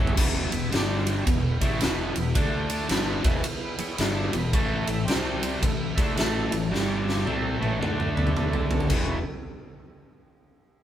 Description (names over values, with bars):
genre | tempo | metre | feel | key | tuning
blues rock power trio and southern rock | 110 BPM | 4/4 | swing 64% on 8ths | unclear | A4 = 440 Hz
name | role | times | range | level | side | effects
overdriven tonewheel organ | sustained chords | 0.0-9.2 s | G3 to G5 | -35 LUFS | right 3 dB | chorus vibrato, slow rotary speaker
distorted electric guitar | riff | 0.0-9.2 s | E2 to D4 | -28 LUFS | equal | distortion
fuzz fingered electric bass | bass | 0.0-9.2 s | E1 to D2 | -31 LUFS | equal | overdrive
huge arena drum kit | drums | 0.1-9.1 s | crash cymbal, kick drum, ride cymbal, snare drum, toms | -26 LUFS | equal | none
room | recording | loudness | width
light reverb | band playing live in one room | -23 LUFS | side -11 dB against mid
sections
0.2-8.9 A section; 8.9-10.8 B section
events
drum fill 0.0, 6.7-8.9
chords
0.2 E; 0.7 G5; 1.3 E; 2.4 D5; 2.9 E; 4.5 A5; 5.1 C5; 5.6 A5; 6.7 G5; 7.3 A5; 7.8 D5; 8.9 E